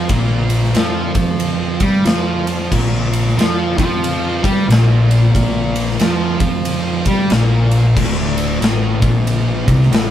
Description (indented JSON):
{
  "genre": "stoner and doom metal",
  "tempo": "92 BPM",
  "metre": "4/4",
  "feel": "swing 62% on 8ths",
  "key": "unclear",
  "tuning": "A4 = 437 Hz",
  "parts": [
    { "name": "fuzz guitar", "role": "riff", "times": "0.0-10.1 s", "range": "D2 to G3", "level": "-15 LUFS", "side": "equal", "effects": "distortion" },
    { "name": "fuzz fingered electric bass", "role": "bass", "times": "0.0-10.1 s", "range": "D1 to G2", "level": "-22 LUFS", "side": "left 1 dB", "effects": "overdrive" },
    { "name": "big rock drum kit", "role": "drums", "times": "0.1-10.1 s", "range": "crash cymbal, kick drum, ride cymbal, snare drum", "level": "-18 LUFS", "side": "equal", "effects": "none" }
  ],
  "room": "moderate studio ambience, RT60 0.4 s",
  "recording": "band playing live in one room, faint mains hum",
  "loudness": "-13 LUFS",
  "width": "side -11 dB against mid",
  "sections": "0.0-10.1 A section",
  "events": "none",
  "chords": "0.0 Bb5; 8.0 D5"
}